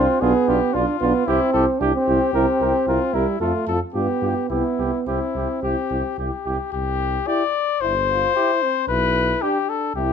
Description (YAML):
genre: classical, brass quintet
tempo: 112 BPM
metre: 4/4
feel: straight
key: C major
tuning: A4 = 442 Hz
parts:
  - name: clear trumpet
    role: melody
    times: 0.0-10.1 s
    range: E4 to D5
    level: -23 LUFS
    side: left 8 dB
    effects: none
  - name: clear flugelhorn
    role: second line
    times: 0.0-9.6 s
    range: F4 to Bb4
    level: -28 LUFS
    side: right 8 dB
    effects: none
  - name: warm French horn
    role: accompaniment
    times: 0.0-9.6 s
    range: D4 to F4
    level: -27 LUFS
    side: left 3 dB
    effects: none
  - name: warm trombone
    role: accompaniment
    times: 0.0-10.1 s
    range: G3 to F4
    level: -22 LUFS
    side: right 3 dB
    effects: none
  - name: mellow bass trombone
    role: bass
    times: 0.0-10.1 s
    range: G1 to G2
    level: -26 LUFS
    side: right 1 dB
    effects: none
room: light reverb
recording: dark, warm production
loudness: -18 LUFS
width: side -7 dB against mid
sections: 0.0-6.7 A section; 6.7-10.1 B section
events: none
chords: 0.2 Bdim; 1.3 C; 2.3 C7; 3.4 F; 3.9 G7; 4.5 C; 8.9 G/B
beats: | 0.22 0.74 1.27 1.80 | 2.34 2.87 3.40 3.94 | 4.50 5.07 5.63 6.18 | 6.73 7.27 7.82 8.35 | 8.89 9.42 9.96